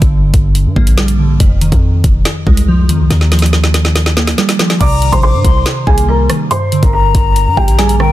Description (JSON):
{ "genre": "hip hop, drill", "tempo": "141 BPM", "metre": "4/4", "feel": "half-time", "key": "C minor", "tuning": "A4 = 440 Hz", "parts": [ { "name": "glassy digital keys", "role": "accompaniment", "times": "0.0-8.1 s", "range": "F2 to Bb3", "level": "-15 LUFS", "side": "right 2 dB", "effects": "chorus, low-pass filter" }, { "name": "hard-hitting 808-style bass", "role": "bass", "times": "0.0-8.1 s", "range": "F1 to G2", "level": "-13 LUFS", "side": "equal", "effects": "none" }, { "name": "drill drum kit", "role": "drums", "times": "0.0-8.1 s", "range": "crash cymbal, hi-hat, kick drum, rim click, snare drum", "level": "-13 LUFS", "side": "equal", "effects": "none" }, { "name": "dark concert grand piano", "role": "melody", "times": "4.8-8.1 s", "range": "G4 to D6", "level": "-16 LUFS", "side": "right 1 dB", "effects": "low-pass filter, digital delay" }, { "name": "breathy mellow silver concert flute", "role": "second line", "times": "4.8-8.1 s", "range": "G5 to D6", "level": "-19 LUFS", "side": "left 9 dB", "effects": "digital delay" } ], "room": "digital ambience", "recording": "dense, heavily limited modern master", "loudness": "-9 LUFS", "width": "side -14 dB against mid", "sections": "0.0-4.8 A section; 4.8-8.1 B section", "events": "drum fill 3.1-4.8", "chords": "0.0 Gm; 1.4 Fm7; 3.1 Ebadd9; 4.8 Cm7; 6.5 Gm" }